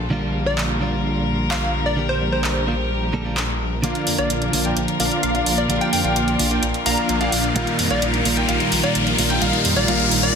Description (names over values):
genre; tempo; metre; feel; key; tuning
EDM, festival progressive house; 129 BPM; 4/4; straight; Bb major; A4 = 440 Hz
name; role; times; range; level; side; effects
warm chamber string section; sustained chords; 0.0-10.4 s; D3 to Bb4; -27 LUFS; left 2 dB; none
wide detuned saw bass; bass; 0.0-10.3 s; Bb1 to F2; -25 LUFS; equal; chorus, tube saturation
direct-recorded clean electric guitar; accompaniment; 0.1-10.3 s; Bb2 to A4; -25 LUFS; right 2 dB; spring reverb, ping-pong delay
plucky unison lead; melody; 0.5-10.3 s; C5 to Bb5; -27 LUFS; equal; cassette tape, ping-pong delay
house drum kit; drums; 0.6-10.3 s; handclaps, hi-hat; -25 LUFS; right 1 dB; overdrive, high-pass filter on snare, high-pass filter on hats, high-pass filter on room
clear grand piano; arpeggios; 3.8-10.3 s; F5 to G5; -30 LUFS; equal; low-pass filter, ping-pong delay
supersaw chords; riff; 3.8-10.3 s; G3 to G5; -23 LUFS; equal; low-pass filter, ping-pong delay
riser; sound effects; 6.2-10.4 s; none; -25 LUFS; left 4 dB; none
room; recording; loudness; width
light reverb, digital ambience; dense, heavily limited modern master; -17 LUFS; side -6 dB against mid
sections
0.0-3.8 A section; 3.8-10.4 B section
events
build-up 3.8-10.4; filter sweep on grand piano 3.8-10.4; riser 6.2-10.4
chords
0.1 Gm7/Bb; 3.8 Bb; 7.6 Ebadd9/Bb